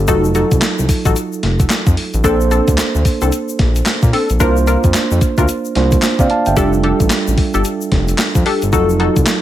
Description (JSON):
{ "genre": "R&B, new jack swing", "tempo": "111 BPM", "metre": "4/4", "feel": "swing 61% on 16ths", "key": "F major", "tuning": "A4 = 440 Hz", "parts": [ { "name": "mellow tine electric piano", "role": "accompaniment", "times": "0.0-9.4 s", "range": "Gb3 to A5", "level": "-18 LUFS", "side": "right 5 dB", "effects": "none" }, { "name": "smooth synth bass", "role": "bass", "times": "0.0-9.3 s", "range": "F1 to C3", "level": "-16 LUFS", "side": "equal", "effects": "none" }, { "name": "funky polysynth comp", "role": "stabs", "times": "0.1-9.2 s", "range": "C4 to Bb4", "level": "-19 LUFS", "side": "left 4 dB", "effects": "chorus, digital delay" }, { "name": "crisp 8-bit digital drum machine", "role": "drums", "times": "0.1-9.4 s", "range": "handclaps, hi-hat, kick drum, snare drum", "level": "-16 LUFS", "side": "equal", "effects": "overdrive, gated reverb" }, { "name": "egg shaker", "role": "percussion", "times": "0.1-9.4 s", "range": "none", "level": "-29 LUFS", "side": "left 9 dB", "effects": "none" } ], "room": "little or no reverb", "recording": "none", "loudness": "-12 LUFS", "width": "side -12 dB against mid", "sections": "0.0-6.6 A section; 6.6-9.4 B section", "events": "none", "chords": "0.1 F7b9; 2.2 Bbmaj9; 4.4 C9sus4; 6.6 F69; 8.7 F7b9" }